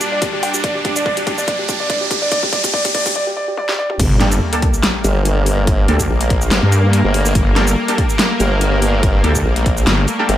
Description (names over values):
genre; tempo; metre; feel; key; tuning
heavy wobble dubstep; 143 BPM; 4/4; swing 54% on 16ths, half-time; G minor; A4 = 442 Hz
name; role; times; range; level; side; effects
dark grand piano; melody; 0.0-4.0 s; G4 to G5; -21 LUFS; equal; digital delay
lush unison pad; sustained chords; 0.0-10.4 s; Bb2 to D4; -22 LUFS; left 1 dB; chorus, sidechain pumping
dubstep drum kit; drums; 0.0-10.4 s; crash cymbal, hi-hat, shaker, snare drum, toms; -20 LUFS; equal; high-pass filter on hats, studio reverb, high-pass filter on perc, high-pass filter on toms, high-pass filter on snare, high-pass filter on cymbals
riser and sub drop; sound effects; 0.0-5.7 s; none; -21 LUFS; equal; none
electronic kick drum; drums; 0.2-9.7 s; none; -19 LUFS; equal; studio reverb
wobble bass; bass; 4.0-10.1 s; G1 to G2; -14 LUFS; equal; chorus, overdrive
orchestra-hit-like synth stab; stabs; 4.2-10.3 s; Bb3 to A4; -22 LUFS; right 1 dB; built-in reverb, digital delay
formant-sweep wobble bass; bass; 5.0-10.4 s; G1 to Bb1; -16 LUFS; equal; chorus, overdrive
room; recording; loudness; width
light reverb; high-pass filter; -13 LUFS; side -12 dB against mid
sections
0.0-4.0 A section; 4.0-10.4 B section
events
build-up 0.0-4.0; drum fill 0.0-3.2, 3.6-4.0; riser 0.0-3.2; break 3.2-4.0; drop 4.0-10.4; impact 4.0-5.7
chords
0.0 Gm; 4.0 Gmadd9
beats
0.22 | 0.64 1.06 1.48 1.90 | 2.32 2.74 3.16 3.58 | 4.00 4.41 4.83 5.25 | 5.67 6.09 6.51 6.93 | 7.35 7.77 8.19 8.61 | 9.03 9.45 9.87 10.29